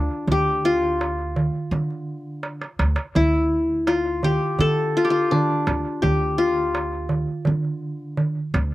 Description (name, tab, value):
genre	Arabic maqam ensemble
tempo	83 BPM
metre	4/4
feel	straight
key	D minor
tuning	A4 = 439 Hz
part	qanun	melody	0.0-8.5 s	D4 to A4	-21 LUFS	left 2 dB	slapback echo
part	upright bass	bass	0.0-8.7 s	D2 to D3	-27 LUFS	right 1 dB	none
part	darbuka	percussion	0.3-8.7 s	none	-25 LUFS	right 2 dB	none
room	little or no reverb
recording	recorded outdoors, with no room sound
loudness	-20 LUFS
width	side -16 dB against mid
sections	0.0-8.7 A section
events	drum fill 2.4-3.2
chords	none